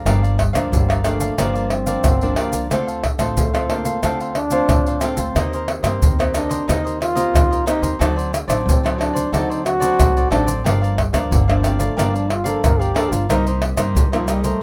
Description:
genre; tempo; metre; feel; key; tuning
samba and choro; 91 BPM; 4/4; straight; G minor; A4 = 439 Hz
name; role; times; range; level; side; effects
cavaquinho; accompaniment; 0.0-14.6 s; D4 to F5; -28 LUFS; equal; none
nylon-string guitar; accompaniment; 0.0-14.6 s; G2 to G4; -27 LUFS; equal; none
upright bass; bass; 0.0-14.5 s; G1 to G2; -25 LUFS; equal; none
maracas, surdo, pandeiro and tamborim; percussion; 0.1-14.6 s; none; -22 LUFS; equal; none
breathy trombone; second line; 0.7-14.6 s; F3 to Bb4; -25 LUFS; equal; none
room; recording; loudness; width
light reverb; rough home demo mix; -19 LUFS; mono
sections
0.1-14.6 A section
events
trombone solo 0.1-14.6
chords
0.1 Gm7; 2.7 Dm7; 5.4 Cm7/Eb; 8.0 D7b9; 10.7 Gm7; 13.3 Cm7

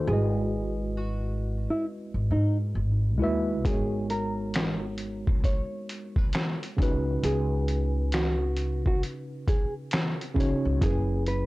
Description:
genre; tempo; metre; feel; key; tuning
lo-fi hip hop; 67 BPM; 4/4; swing 63% on 16ths; unclear; A4 = 437 Hz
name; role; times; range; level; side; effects
mellow tine electric piano; accompaniment; 0.0-11.5 s; C#3 to E5; -31 LUFS; equal; medium stereo tremolo, low-pass filter
hollow-body jazz guitar; melody; 0.1-11.5 s; D#4 to C#5; -32 LUFS; right 1 dB; low-pass filter
upright bass; bass; 0.1-11.5 s; F#1 to G#2; -28 LUFS; equal; none
trip hop sampler-style drum kit; drums; 3.6-11.5 s; finger snaps, hi-hat, kick drum, snare drum; -26 LUFS; equal; none
room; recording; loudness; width
digital ambience; dry, gritty hardware recording; -25 LUFS; side -19 dB against mid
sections
0.0-11.5 A section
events
none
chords
0.1 Emaj7/G#; 3.6 G#m11; 6.8 C#9sus4; 10.8 F#9sus4

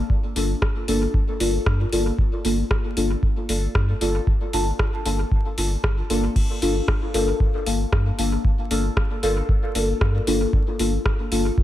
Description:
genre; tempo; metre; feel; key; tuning
dub techno; 115 BPM; 4/4; swing 55% on 16ths; G minor; A4 = 439 Hz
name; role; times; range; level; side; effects
deep mellow chord stab; stabs; 0.0-11.4 s; Bb3 to A4; -24 LUFS; left 1 dB; chorus, phaser, sidechain pumping, dub echo
soft dub sub bass; bass; 0.0-11.5 s; G1 to G2; -24 LUFS; equal; sidechain pumping
electronic kick drum; drums; 0.1-11.6 s; none; -22 LUFS; equal; none
booming analog drum machine; drums; 0.4-11.4 s; crash cymbal, hi-hat, rim click; -29 LUFS; equal; dub echo
room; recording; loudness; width
light reverb; vinyl crackle; -19 LUFS; side -13 dB against mid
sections
0.0-11.6 A section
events
none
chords
0.0 Gm7

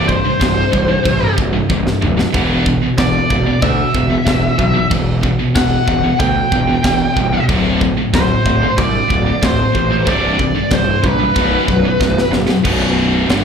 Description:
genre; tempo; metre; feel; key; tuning
heavy metal; 93 BPM; 4/4; straight; unclear; A4 = 441 Hz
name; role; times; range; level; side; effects
high-gain lead guitar; melody; 0.0-12.3 s; B4 to G5; -18 LUFS; left 1 dB; distortion, slapback echo
heavy high-gain guitar; riff; 0.0-13.4 s; B1 to E3; -19 LUFS; right 9 dB; distortion, slapback echo
scooped high-gain guitar; riff; 0.0-13.4 s; B1 to E3; -20 LUFS; left 9 dB; distortion, slapback echo
fuzz picked electric bass; bass; 0.0-13.4 s; B0 to D2; -18 LUFS; equal; overdrive
tight metal drum kit; drums; 0.1-13.4 s; crash cymbal, kick drum, snare drum, toms; -19 LUFS; equal; none
room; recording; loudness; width
little or no reverb; live gig heard through the venue's PA, club reverb; -12 LUFS; side -7 dB against mid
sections
0.0-12.7 A section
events
drum fill 1.7-2.3, 12.0-12.7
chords
0.0 C5; 2.3 Em; 7.5 D5; 10.1 C5; 11.4 B5; 12.7 Bm

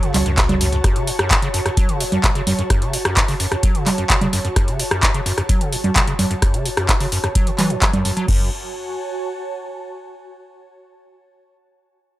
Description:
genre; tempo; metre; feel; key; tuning
acid house; 129 BPM; 4/4; straight; F# minor; A4 = 440 Hz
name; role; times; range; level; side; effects
acid bass, square; riff; 0.0-8.5 s; F#2 to F#3; -24 LUFS; equal; overdrive, lush chorus, analog delay
round analog bass; bass; 0.0-0.8, 8.3-8.5 s; F#1 to C#2; -22 LUFS; equal; tube saturation, sidechain pumping
booming analog drum machine; drums; 0.0-8.4 s; congas, crash cymbal, handclaps, hi-hat, rim click; -19 LUFS; equal; none
ethereal airy pad; texture; 0.0-10.1 s; F#4 to A5; -27 LUFS; right 1 dB; ensemble chorus, built-in reverb, sidechain pumping
dusty soul sampler-style drum kit; drums; 0.1-0.8 s; hi-hat, snare drum; -31 LUFS; equal; none
electronic kick drum; drums; 0.4-8.4 s; none; -19 LUFS; equal; none
room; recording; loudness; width
light reverb, digital ambience; dry, gritty hardware recording; -16 LUFS; side -16 dB against mid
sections
0.0-8.3 A section; 8.3-10.1 B section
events
none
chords
0.0 F#m

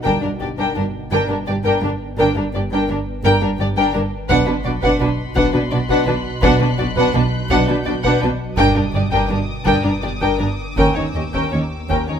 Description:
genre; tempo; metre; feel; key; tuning
cinematic, suspense film score; 84 BPM; 3/4; straight; unclear; A4 = 440 Hz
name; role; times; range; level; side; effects
warm studio violin section; melody; 0.0-12.2 s; Bb4 to G5; -23 LUFS; left 2 dB; none
dark studio violin section; second line; 0.0-12.2 s; D4 to B4; -22 LUFS; left 2 dB; none
dark studio viola section; accompaniment; 0.0-12.2 s; C#4 to D4; -23 LUFS; right 1 dB; none
dark studio double bass section; bass; 0.0-12.0 s; G1 to D#2; -24 LUFS; right 2 dB; none
warm studio cello section; bass; 0.0-12.2 s; D#2 to B2; -23 LUFS; right 1 dB; none
organ-like drone; drone; 0.0-12.2 s; G1 to D#2; -28 LUFS; equal; ensemble chorus, built-in reverb
taiko ensemble; drums; 0.1-12.2 s; none; -26 LUFS; equal; none
warm studio violin section; texture; 4.3-12.2 s; B5 to F#6; -32 LUFS; left 3 dB; none
room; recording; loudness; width
light reverb; close, detailed microphones; -16 LUFS; side -8 dB against mid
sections
0.0-12.2 A section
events
none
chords
0.1 Gm; 4.3 Bm; 8.6 Gm; 10.8 D#7

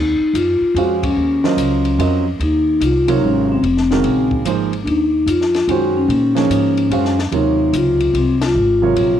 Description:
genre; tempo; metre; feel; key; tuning
modal jazz; 146 BPM; 3/4; swing 65% on 8ths; Eb dorian; A4 = 440 Hz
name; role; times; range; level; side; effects
vibraphone with soft mallets; melody; 0.0-9.2 s; C4 to Gb4; -16 LUFS; left 2 dB; none
upright bass; bass; 0.0-9.2 s; F1 to Bb2; -21 LUFS; equal; none
compact cocktail drum kit; drums; 0.3-9.1 s; hi-hat, kick drum, ride cymbal, snare drum; -28 LUFS; left 4 dB; none
warm grand piano; accompaniment; 0.8-9.2 s; C3 to F5; -20 LUFS; right 10 dB; none
room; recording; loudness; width
light reverb, studio reverb; 1960s-style stereo; -14 LUFS; side -10 dB against mid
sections
0.0-9.2 A section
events
band accent 1.0, 8.3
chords
0.0 Ebm9; 2.4 Fm7; 4.9 Ebm9; 7.3 Fm7

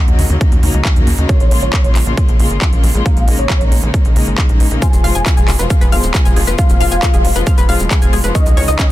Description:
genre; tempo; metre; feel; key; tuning
uplifting trance; 136 BPM; 4/4; straight; unclear; A4 = 439 Hz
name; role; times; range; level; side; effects
dense compressed supersaw; melody; 0.0-8.9 s; Db5 to Ab5; -24 LUFS; equal; sidechain pumping, low-pass filter, dub echo
dark studio string section; sustained chords; 0.0-8.9 s; Cb3 to F4; -21 LUFS; left 2 dB; sidechain pumping
tight sequencer bass; bass; 0.1-8.8 s; Eb1 to Eb2; -16 LUFS; equal; sidechain pumping
big-room dance drum kit; drums; 0.1-8.9 s; handclaps, hi-hat, shaker; -22 LUFS; right 1 dB; sidechain pumping on hats, sidechain pumping on cymbals, sidechain pumping on perc
electronic kick drum; drums; 0.4-8.9 s; none; -12 LUFS; equal; none
analog pluck; arpeggios; 4.8-8.8 s; Db4 to Ab5; -22 LUFS; left 4 dB; chorus, cassette tape, sidechain pumping, dub echo
room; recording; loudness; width
little or no reverb; dense, heavily limited modern master; -10 LUFS; side -15 dB against mid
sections
0.0-8.9 A section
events
none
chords
0.0 Ebm7; 1.3 Bbm7; 4.8 Fdim; 8.4 Dbsus2

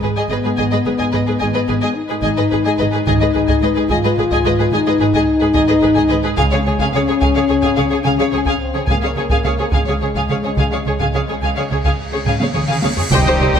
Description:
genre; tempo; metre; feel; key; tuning
cinematic, epic orchestral film score; 72 BPM (dotted quarters); 12/8; straight; unclear; A4 = 440 Hz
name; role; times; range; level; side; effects
rich symphonic violin section; melody; 0.0-13.6 s; G4 to Ab5; -24 LUFS; left 2 dB; none
warm symphonic violin section; second line; 0.0-13.6 s; G4 to G5; -23 LUFS; left 2 dB; none
warm studio viola section; accompaniment; 0.0-13.6 s; G4 to C5; -24 LUFS; right 1 dB; none
mellow French horn section; sustained chords; 0.0-13.6 s; G3 to F4; -19 LUFS; left 4 dB; none
warm symphonic cello section; bass; 0.0-13.6 s; C2 to Db3; -24 LUFS; right 3 dB; none
warm symphonic double bass section; bass; 0.0-13.5 s; Ab1 to Db2; -23 LUFS; right 4 dB; none
taiko ensemble; drums; 1.0-13.6 s; none; -21 LUFS; equal; none
cymbal swell and impact; sound effects; 11.7-13.6 s; none; -27 LUFS; right 1 dB; none
clear trombone section; sustained chords; 13.1-13.6 s; Eb3 to G3; -26 LUFS; right 3 dB; none
pipe organ, strings celeste; sustained chords; 13.1-13.6 s; C4 to Eb5; -22 LUFS; right 1 dB; none
dark trumpet section; stabs; 13.1-13.6 s; G4; -23 LUFS; right 1 dB; none
timpani; percussion; 13.1-13.6 s; C3; -23 LUFS; equal; none
room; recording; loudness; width
moderate scoring stage reverb, RT60 1.5 s; none; -14 LUFS; side -8 dB against mid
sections
0.0-13.1 A section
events
cymbal swell 11.7-13.1; drum fill 12.3-13.1; impact 13.1-13.6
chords
0.0 Abm; 6.4 Db

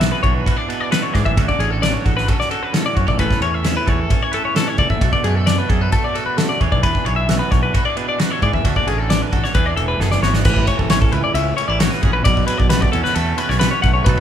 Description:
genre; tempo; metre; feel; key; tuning
math rock and midwest emo; 132 BPM; 4/4; straight; A major; A4 = 441 Hz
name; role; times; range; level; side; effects
twangy electric guitar; accompaniment; 0.0-14.2 s; F#2 to B4; -24 LUFS; right 7 dB; none
twelve-string electric guitar; arpeggios; 0.0-14.2 s; G#4 to F#5; -21 LUFS; left 5 dB; none
fuzz fingered electric bass; bass; 0.0-14.2 s; E1 to G#2; -21 LUFS; equal; overdrive
loose indie drum kit; drums; 0.0-14.2 s; crash cymbal, kick drum, ride cymbal, snare drum; -18 LUFS; equal; none
room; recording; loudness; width
moderate large studio reverb, RT60 1.1 s; band playing live in one room; -15 LUFS; side -9 dB against mid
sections
0.0-10.5 A section; 10.5-14.2 B section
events
drum fill 10.0-10.5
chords
0.0 E7; 3.2 A; 5.0 Bm7; 6.6 E7; 8.6 Dmaj7; 9.5 E7; 10.5 Aadd9; 12.3 Bm9

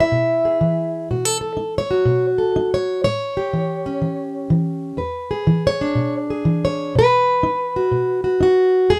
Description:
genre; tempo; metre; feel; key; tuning
acoustic country blues, solo or duo; 123 BPM; 4/4; swing 66% on 8ths; unclear; A4 = 440 Hz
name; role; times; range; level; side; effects
fingerpicked plugged-in steel-string acoustic guitar; solo; 0.0-9.0 s; E2 to E5; -19 LUFS; equal; none
room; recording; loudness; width
light reverb; close, detailed microphones; -19 LUFS; mono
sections
0.0-8.9 A section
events
steel-string acoustic guitar solo 0.0-8.9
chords
0.0 E; 1.1 B7; 3.1 A7; 5.0 E7; 7.0 B

